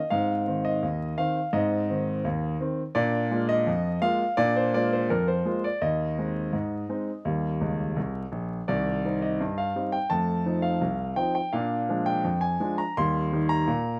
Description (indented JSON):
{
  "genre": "ragtime piano",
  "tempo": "84 BPM",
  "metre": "2/4",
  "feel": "straight",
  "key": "Ab major, Eb major from 8.7 s",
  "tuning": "A4 = 441 Hz",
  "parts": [
    { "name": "clear concert grand piano", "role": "solo", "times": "0.0-14.0 s", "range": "Bb1 to C6", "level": "-27 LUFS", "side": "equal", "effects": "none" }
  ],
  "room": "light reverb",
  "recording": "recorded outdoors, with no room sound, vinyl crackle",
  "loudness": "-27 LUFS",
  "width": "mono",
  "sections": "0.0-14.0 A section",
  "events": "grand piano fill 7.6-8.7",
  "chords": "0.1 Ab; 3.0 Bb7; 5.8 Ab/Eb; 7.2 Eb; 8.7 Cm; 10.1 F7; 11.5 Bb7; 13.0 Eb"
}